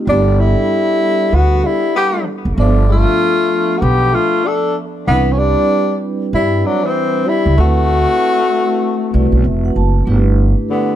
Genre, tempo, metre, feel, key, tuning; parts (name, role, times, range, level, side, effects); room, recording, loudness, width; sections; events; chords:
hip hop, jazz-hop; 96 BPM; 4/4; swing 60% on 16ths; G major; A4 = 438 Hz
vibraphone with soft mallets; accompaniment; 0.0-11.0 s; F3 to A5; -20 LUFS; right 3 dB; plate reverb
breathy tenor saxophone; melody; 0.1-11.0 s; B3 to A4; -16 LUFS; equal; plate reverb
breathy tenor saxophone; second line; 0.1-11.0 s; D3 to D4; -20 LUFS; left 9 dB; plate reverb, analog delay
upright bass; bass; 0.1-10.5 s; F1 to G2; -14 LUFS; right 1 dB
light reverb; -12 LUFS; side -11 dB against mid
0.0-10.1 A section
vibraphone fill 8.8-10.1
0.1 G6; 2.6 G13; 5.1 Cmaj7; 7.6 D13; 10.1 G69